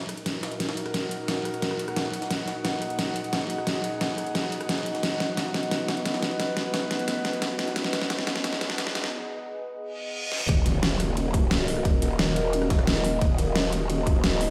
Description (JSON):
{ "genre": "dark technical drum and bass", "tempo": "176 BPM", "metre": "4/4", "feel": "straight", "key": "Eb minor", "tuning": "A4 = 442 Hz", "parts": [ { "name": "dark analog pad", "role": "sustained chords", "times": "0.0-14.5 s", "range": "Bb3 to Eb5", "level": "-35 LUFS", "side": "equal", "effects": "chorus, phaser, sidechain pumping" }, { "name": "airy breathy pad", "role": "texture", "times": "0.1-9.1, 11.7-14.5 s", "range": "Eb4 to Gb5", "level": "-36 LUFS", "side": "equal", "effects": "chorus, sidechain pumping" }, { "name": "breakbeat sampler-style drum kit", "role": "drums", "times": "0.1-14.5 s", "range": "ride cymbal, snare drum", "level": "-40 LUFS", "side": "equal", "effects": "none" }, { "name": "dubstep drum kit", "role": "drums", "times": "0.1-14.5 s", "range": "hi-hat, rim click, snare drum, toms", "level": "-31 LUFS", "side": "equal", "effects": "overdrive" }, { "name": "riser, reverse cymbal and impact", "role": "sound effects", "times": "7.2-11.9 s", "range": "none", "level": "-37 LUFS", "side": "equal", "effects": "none" }, { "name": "growl bass", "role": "bass", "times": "10.5-14.5 s", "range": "Eb1", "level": "-29 LUFS", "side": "equal", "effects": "chorus, overdrive, sidechain pumping" }, { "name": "electronic kick drum", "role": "drums", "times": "10.5-14.1 s", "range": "none", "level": "-26 LUFS", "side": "equal", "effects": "overdrive" } ], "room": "moderate lush hall reverb, RT60 1.5 s", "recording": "played on a big sound system in a bare room, stone room reverb, high-pass filter", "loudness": "-27 LUFS", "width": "mono", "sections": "0.0-10.5 A section; 10.5-14.5 B section", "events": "build-up 0.0-10.5; drum fill 0.0-9.1, 10.3; filter sweep 0.0-10.5; break 9.1-10.5; reverse cymbal 10.0-10.5; drop 10.5-14.5; impact 10.5-11.9", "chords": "0.0 Ebm; 5.0 B; 10.5 Ebm" }